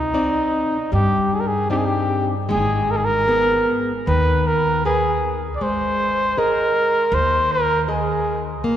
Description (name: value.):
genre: fado-style ballad.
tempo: 77 BPM.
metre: 4/4.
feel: rubato.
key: unclear.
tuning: A4 = 440 Hz.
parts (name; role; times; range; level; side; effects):
breathy trumpet; melody; 0.0-8.5 s; Eb4 to D5; -19 LUFS; right 1 dB; none.
nylon-string guitar; accompaniment; 0.0-8.8 s; C3 to Eb5; -25 LUFS; left 1 dB; none.
upright bass; bass; 0.0-8.8 s; Ab1 to G2; -24 LUFS; equal; none.
room: wet church reverb, RT60 3.7 s.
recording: recorded in a church or concert hall.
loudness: -17 LUFS.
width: side -10 dB against mid.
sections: 0.0-8.8 A section.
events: none.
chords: 0.0 Cmadd9; 2.5 Abmadd9; 5.6 Absus2.